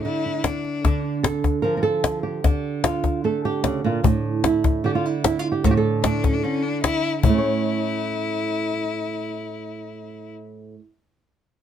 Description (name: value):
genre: flamenco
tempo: 150 BPM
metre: 4/4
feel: straight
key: A major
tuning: A4 = 435 Hz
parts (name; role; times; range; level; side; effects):
- flamenco guitar; melody; 0.0-10.8 s; A2 to C#5; -23 LUFS; right 4 dB; none
- clear cello; second line; 0.0-1.1, 6.0-10.3 s; C#4 to E4; -26 LUFS; left 5 dB; none
- cajon; percussion; 0.4-7.3 s; none; -20 LUFS; left 4 dB; none
room: little or no reverb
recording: close, detailed microphones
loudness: -20 LUFS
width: side -9 dB against mid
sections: 0.0-7.2 A section; 7.2-10.4 B section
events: none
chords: 0.0 Asus4; 0.8 Dm; 4.0 Asus4; 7.2 A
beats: 0.04 0.44 | 0.84 1.24 1.64 2.04 | 2.44 2.84 3.24 3.64 | 4.04 4.44 4.84 5.24 | 5.64 6.04 6.44 6.84 | 7.24 7.64 8.04 8.44 | 8.83 9.23 9.63 10.03